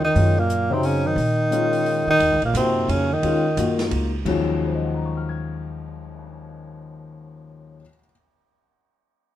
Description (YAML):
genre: modal jazz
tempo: 176 BPM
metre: 3/4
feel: swing 62% on 8ths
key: Eb dorian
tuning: A4 = 440 Hz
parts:
  - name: breathy tenor saxophone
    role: melody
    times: 0.0-3.9 s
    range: Bb3 to Eb4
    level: -21 LUFS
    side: equal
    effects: none
  - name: mellow bass clarinet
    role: second line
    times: 0.0-3.9 s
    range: Bb2 to Eb3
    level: -26 LUFS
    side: right 4 dB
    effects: none
  - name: upright bass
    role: bass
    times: 0.0-7.8 s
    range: Bb1 to Bb2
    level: -25 LUFS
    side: right 1 dB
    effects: none
  - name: dark baby grand piano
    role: accompaniment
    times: 0.2-8.1 s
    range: Eb2 to Ab6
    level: -26 LUFS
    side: left 5 dB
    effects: none
  - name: open jazz drum kit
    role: drums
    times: 0.2-6.2 s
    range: crash cymbal, cymbal swell, hi-hat, kick drum, ride cymbal, snare drum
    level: -36 LUFS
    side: right 2 dB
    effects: none
room: moderate studio reverb, RT60 0.8 s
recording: minimal, uncompressed stereo recording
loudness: -19 LUFS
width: side -12 dB against mid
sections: 0.0-2.2 A section; 2.2-4.2 B section; 4.2-6.3 C section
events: none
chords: 0.0 Ebm11; 2.2 Ebm9; 4.2 Ebm11